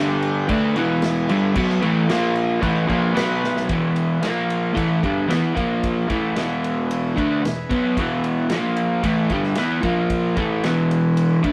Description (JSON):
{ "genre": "garage rock duo or trio", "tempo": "112 BPM", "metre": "4/4", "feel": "straight", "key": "unclear", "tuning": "A4 = 439 Hz", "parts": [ { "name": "combo organ", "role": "sustained chords", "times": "0.0-11.5 s", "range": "E#4 to B5", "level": "-34 LUFS", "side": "equal", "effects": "spring reverb" }, { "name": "crunchy overdriven guitar", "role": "riff", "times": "0.0-11.5 s", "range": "E2 to E4", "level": "-21 LUFS", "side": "equal", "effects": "none" }, { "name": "vintage drum kit", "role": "drums", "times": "0.2-11.5 s", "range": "crash cymbal, kick drum, ride cymbal, snare drum", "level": "-31 LUFS", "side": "equal", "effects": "none" } ], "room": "light reverb", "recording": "rough rehearsal-room recording", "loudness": "-21 LUFS", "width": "mono", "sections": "0.0-3.7 A section; 3.7-11.5 B section", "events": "transistor combo organ fill 2.1-3.7; drum fill 3.4", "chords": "0.5 E; 2.1 A#5; 2.6 E; 3.2 B5; 3.7 E; 4.2 A#5; 4.8 E; 5.6 A#5; 6.1 E; 8.5 A#5; 9.0 E; 9.8 A#5; 10.4 E", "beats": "0.49 1.02 | 1.56 2.09 2.62 3.16 | 3.69 4.22 4.76 5.29 | 5.83 6.36 6.90 7.43 | 7.97 8.50 9.04 9.57 | 10.11 10.64 11.17" }